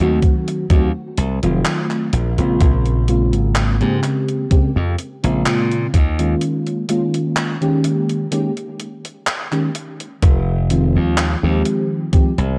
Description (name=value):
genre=vaporwave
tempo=63 BPM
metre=4/4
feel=straight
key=F minor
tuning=A4 = 440 Hz
part: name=mellow FM electric piano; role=accompaniment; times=0.0-12.3 s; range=Db3 to G4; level=-21 LUFS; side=equal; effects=analog chorus, vintage 12-bit sampler grit, analog delay
part: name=glassy slap bass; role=bass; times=0.0-12.6 s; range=F1 to Bb2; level=-20 LUFS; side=equal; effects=none
part: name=gated 80s digital drum machine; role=drums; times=0.0-12.6 s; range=handclaps, hi-hat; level=-27 LUFS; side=equal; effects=gated reverb
part: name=electronic kick drum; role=drums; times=0.2-12.3 s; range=none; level=-16 LUFS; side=equal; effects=none
room=light reverb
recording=dark, warm production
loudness=-18 LUFS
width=mono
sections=0.0-10.2 A section; 10.2-12.6 B section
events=break 6.4-10.2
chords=0.0 F7b9; 2.1 Bbm9; 5.9 Eb9sus4; 10.2 Fm7